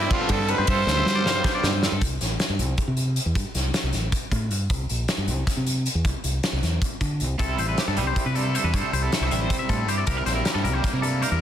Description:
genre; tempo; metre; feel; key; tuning
math rock and midwest emo; 313 BPM (eighths); 7/8; straight; C major; A4 = 440 Hz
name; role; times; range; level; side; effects
growling trumpet; melody; 0.0-1.8 s; E4 to C5; -26 LUFS; equal; none
twangy electric guitar; accompaniment; 0.0-2.0, 7.4-11.4 s; G2 to Bb4; -30 LUFS; right 10 dB; tremolo
twangy electric guitar; arpeggios; 0.0-2.0, 7.4-11.4 s; A4 to F5; -29 LUFS; left 9 dB; none
fingered electric bass; bass; 0.0-11.4 s; A1 to G3; -25 LUFS; equal; none
crunchy overdriven guitar; riff; 0.1-1.7, 7.4-11.4 s; C3 to E4; -30 LUFS; left 1 dB; none
loose indie drum kit; drums; 0.1-11.3 s; hi-hat, kick drum, ride cymbal, snare drum; -25 LUFS; equal; none
room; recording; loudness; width
little or no reverb; dense, heavily limited modern master; -21 LUFS; side -10 dB against mid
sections
0.0-2.0 A section; 2.0-11.4 B section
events
drum fill 0.9-2.0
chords
0.0 G9sus4; 2.0 C5; 4.7 N.C.; 6.0 Cadd9; 7.4 C6; 10.1 C7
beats
0.11 0.30 0.49 | 0.68 0.87 1.06 1.25 1.44 1.64 1.83 | 2.02 2.21 2.40 2.59 2.78 2.98 3.17 | 3.36 3.55 3.74 3.94 4.13 4.32 4.51 | 4.70 4.89 5.09 5.28 5.47 5.66 5.86 | 6.05 6.24 6.43 6.62 6.81 7.01 7.20 | 7.39 7.58 7.77 7.96 8.16 8.35 8.54 | 8.73 8.92 9.12 9.31 9.50 9.69 9.88 | 10.07 10.26 10.46 10.65 10.84 11.03 11.22

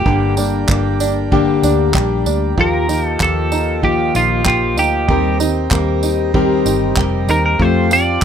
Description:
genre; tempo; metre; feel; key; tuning
acoustic pop; 96 BPM; 4/4; straight; G minor; A4 = 441 Hz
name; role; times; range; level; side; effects
twelve-string electric guitar; melody; 0.0-8.2 s; F4 to D5; -17 LUFS; right 2 dB; none
fingerpicked plugged-in steel-string acoustic guitar; accompaniment; 0.0-8.2 s; G2 to Bb4; -17 LUFS; left 4 dB; none
pedal harmonium; sustained chords; 0.0-8.2 s; G4 to Bb5; -28 LUFS; right 5 dB; none
open-back banjo; arpeggios; 0.0-8.2 s; D3 to G4; -24 LUFS; right 8 dB; none
vintage muted fingered electric bass; bass; 0.0-8.2 s; F1 to F2; -19 LUFS; right 1 dB; none
soft brush drum kit; drums; 0.1-8.2 s; handclaps, kick drum, tambourine; -20 LUFS; right 1 dB; none
room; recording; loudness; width
light reverb; none; -13 LUFS; side -8 dB against mid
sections
0.0-8.2 A section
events
none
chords
0.1 Gm; 2.6 Ebadd9; 5.1 Cm7/Eb; 7.6 Fadd9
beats
| 0.06 0.69 1.32 1.95 | 2.58 3.21 3.83 4.46 | 5.09 5.72 6.34 6.97 | 7.60 8.22

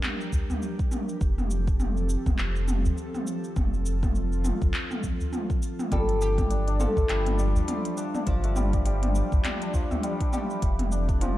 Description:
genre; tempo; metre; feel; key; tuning
organic downtempo; 102 BPM; 4/4; swing 58% on 16ths; unclear; A4 = 441 Hz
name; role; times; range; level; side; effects
airy breathy pad; sustained chords; 0.0-11.4 s; F3 to Bb4; -35 LUFS; equal; chorus, sidechain pumping
organic electronic drum kit; drums; 0.0-11.3 s; handclaps, hi-hat, shaker, toms; -32 LUFS; equal; none
electronic kick drum; drums; 0.3-11.2 s; none; -27 LUFS; equal; none
udu; percussion; 0.3-10.0 s; none; -30 LUFS; equal; none
warm sub bass; bass; 1.2-11.4 s; F1 to G1; -26 LUFS; equal; sidechain pumping
oud; melody; 5.9-11.4 s; D4 to A4; -32 LUFS; left 2 dB; digital delay
santur; arpeggios; 5.9-11.4 s; F3 to D4; -32 LUFS; left 2 dB; tape echo
quartz singing bowl; texture; 5.9-11.4 s; F3 to F4; -40 LUFS; left 3 dB; none
room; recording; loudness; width
light reverb, studio ambience; dark, warm production; -24 LUFS; side -15 dB against mid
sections
0.0-11.4 A section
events
none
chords
0.0 Gm; 1.2 F; 5.9 G5; 10.6 F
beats
0.04 0.62 | 1.21 1.80 2.39 2.98 | 3.56 4.15 4.74 5.33 | 5.92 6.50 7.09 7.68 | 8.27 8.86 9.45 10.04 | 10.62 11.21

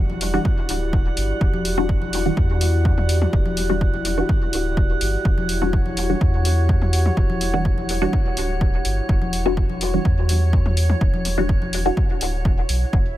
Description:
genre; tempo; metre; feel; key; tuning
dub techno; 125 BPM; 4/4; straight; E dorian; A4 = 440 Hz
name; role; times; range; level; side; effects
dark analog pad; sustained chords; 0.0-12.9 s; E4 to F#5; -28 LUFS; left 1 dB; chorus, sidechain pumping
filtered dub chord stab; stabs; 0.0-12.0 s; E3 to F#4; -26 LUFS; left 1 dB; phaser, sidechain pumping, dub echo
warm sub bass; bass; 0.0-13.2 s; D1 to E2; -22 LUFS; equal; sidechain pumping
drifting glass-harmonics texture; texture; 0.0-13.2 s; E4 to F#5; -31 LUFS; right 6 dB; chorus, built-in reverb, sidechain pumping
electronic congas and toms; percussion; 0.1-11.7 s; none; -31 LUFS; left 3 dB; overdrive, sidechain pumping on perc, sidechain pumping on toms, dub echo
electronic hi-hat; drums; 0.2-12.8 s; none; -28 LUFS; left 1 dB; none
electronic kick drum; drums; 0.5-13.0 s; none; -20 LUFS; equal; none
room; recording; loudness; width
little or no reverb; none; -18 LUFS; side -14 dB against mid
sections
0.0-12.9 A section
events
none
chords
0.0 Em9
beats
0.45 0.93 | 1.41 1.89 2.37 2.85 | 3.33 3.81 4.29 4.77 | 5.25 5.73 6.21 6.69 | 7.17 7.65 8.13 8.61 | 9.09 9.57 10.05 10.53 | 11.01 11.49 11.97 12.45 | 12.93

